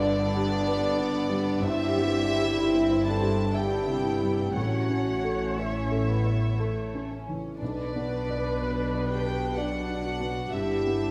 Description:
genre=cinematic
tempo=61 BPM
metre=3/4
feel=uneven beats, rubato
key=B minor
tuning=A4 = 440 Hz
part: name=warm symphonic violin section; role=melody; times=0.0-11.1 s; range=D5 to A5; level=-37 LUFS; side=equal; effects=none
part: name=warm symphonic violin section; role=second line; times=0.0-11.1 s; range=A3 to E4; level=-37 LUFS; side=equal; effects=none
part: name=dark symphonic viola section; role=accompaniment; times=0.0-11.1 s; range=D3 to C#5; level=-35 LUFS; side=equal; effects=none
part: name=felt-muted upright piano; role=accompaniment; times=0.0-11.1 s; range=B1 to E5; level=-35 LUFS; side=equal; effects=none
part: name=warm French horn section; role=sustained chords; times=0.0-11.1 s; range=D4 to A4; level=-33 LUFS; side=equal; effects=none
part: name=rich symphonic double bass section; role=bass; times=0.0-11.1 s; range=G1 to B1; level=-35 LUFS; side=equal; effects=none
part: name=warm symphonic cello section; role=bass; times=0.0-11.1 s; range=G2 to B2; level=-37 LUFS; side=equal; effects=none
room=moderate scoring stage reverb, RT60 1.7 s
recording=none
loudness=-27 LUFS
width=mono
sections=0.0-11.1 A section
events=none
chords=0.0 G; 1.6 C/G; 4.6 A; 7.6 Bm; 10.5 G

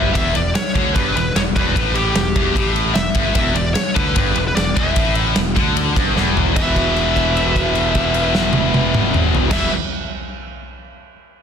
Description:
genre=hard rock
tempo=150 BPM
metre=4/4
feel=straight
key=E minor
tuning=A4 = 440 Hz
part: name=smooth overdriven lead guitar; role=melody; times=0.0-9.7 s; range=G4 to E5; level=-22 LUFS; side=left 1 dB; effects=analog delay
part: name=heavy high-gain guitar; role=riff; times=0.0-9.7 s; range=E2 to E3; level=-22 LUFS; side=left 13 dB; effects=distortion
part: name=tight distorted guitar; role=riff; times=0.0-9.7 s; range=E2 to E3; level=-24 LUFS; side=right 12 dB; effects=distortion
part: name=fuzz fingered electric bass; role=bass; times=0.0-9.7 s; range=E1 to D2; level=-23 LUFS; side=equal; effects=overdrive
part: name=high-gain distorted guitar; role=riff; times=0.1-9.7 s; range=E2 to E4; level=-26 LUFS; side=equal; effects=distortion
part: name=big rock drum kit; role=drums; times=0.2-9.6 s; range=crash cymbal, kick drum, ride cymbal, snare drum, toms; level=-20 LUFS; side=equal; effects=none
room=light reverb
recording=dense, heavily limited modern master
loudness=-14 LUFS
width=side -7 dB against mid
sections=0.0-6.6 A section; 6.6-9.8 B section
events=drum fill 6.2-6.6; held note 6.6-9.5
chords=0.0 Em

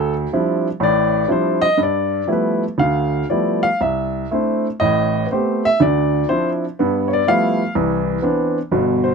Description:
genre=solo jazz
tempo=122 BPM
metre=4/4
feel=swing 67% on 8ths, rubato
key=C major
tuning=A4 = 439 Hz
part: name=warm upright piano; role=solo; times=0.0-9.1 s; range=G1 to F5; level=-16 LUFS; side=equal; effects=none
room=light reverb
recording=close, detailed microphones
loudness=-16 LUFS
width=side -5 dB against mid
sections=0.0-9.1 A section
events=upright piano solo 0.0-9.1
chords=0.0 Dm11; 1.8 G13; 3.8 C69; 4.8 Am9; 5.8 Dm9; 6.8 G13; 7.8 Cmaj9

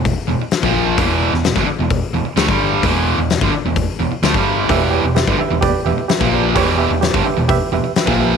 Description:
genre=classic rock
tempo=129 BPM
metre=4/4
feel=straight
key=unclear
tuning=A4 = 440 Hz
part: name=distorted electric guitar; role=riff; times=0.0-8.4 s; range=E2 to A#3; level=-20 LUFS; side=right 11 dB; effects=distortion
part: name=raw garage guitar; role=riff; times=0.0-8.4 s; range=E2 to A#3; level=-21 LUFS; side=left 11 dB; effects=overdrive
part: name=hollow-body short-scale fingered electric bass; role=bass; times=0.0-8.4 s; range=E1 to D2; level=-22 LUFS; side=equal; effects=none
part: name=huge arena drum kit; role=drums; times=0.1-8.2 s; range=hi-hat, kick drum, snare drum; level=-19 LUFS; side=left 4 dB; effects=none
part: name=barky reed electric piano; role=accompaniment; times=4.7-8.4 s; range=G4 to G5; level=-19 LUFS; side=right 10 dB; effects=fast tremolo
room=light reverb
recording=1960s-style stereo with parts hard left and right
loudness=-14 LUFS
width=side -6 dB against mid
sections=0.0-8.4 A section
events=reed electric piano fill 7.7-8.4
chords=0.0 Em

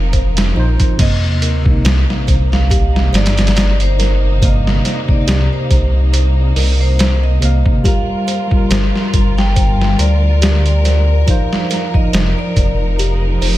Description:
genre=trip hop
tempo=70 BPM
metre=4/4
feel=swing 55% on 16ths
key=C minor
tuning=A4 = 440 Hz
part: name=tine electric piano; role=accompaniment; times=0.0-13.6 s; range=C3 to F5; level=-22 LUFS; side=left 1 dB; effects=tremolo, tape echo
part: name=dark studio string section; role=sustained chords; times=0.0-13.6 s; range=C3 to Bb4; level=-25 LUFS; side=left 2 dB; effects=vintage 12-bit sampler grit
part: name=music box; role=arpeggios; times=0.0-13.6 s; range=G4 to F5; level=-27 LUFS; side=right 1 dB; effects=ping-pong delay
part: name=dark detuned saw bass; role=bass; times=0.0-13.6 s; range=F1 to D2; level=-13 LUFS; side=equal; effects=none
part: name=bowed-like drone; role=texture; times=0.0-1.0 s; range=C4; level=-33 LUFS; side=right 1 dB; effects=none
part: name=trip hop sampler-style drum kit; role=drums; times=0.1-13.6 s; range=crash cymbal, hi-hat, kick drum, snare drum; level=-16 LUFS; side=equal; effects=none
part: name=vibraphone with hard mallets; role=melody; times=1.0-12.8 s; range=C5 to G5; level=-24 LUFS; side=equal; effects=vintage 12-bit sampler grit, tape echo
part: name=sub drop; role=sound effects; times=1.0-4.4 s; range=none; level=-21 LUFS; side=equal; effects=none
room=little or no reverb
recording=none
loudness=-11 LUFS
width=side -15 dB against mid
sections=1.0-13.6 A section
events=impact 1.0-4.4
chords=0.0 F7sus4; 1.0 Cm7; 7.8 Gm7; 11.3 F7sus4

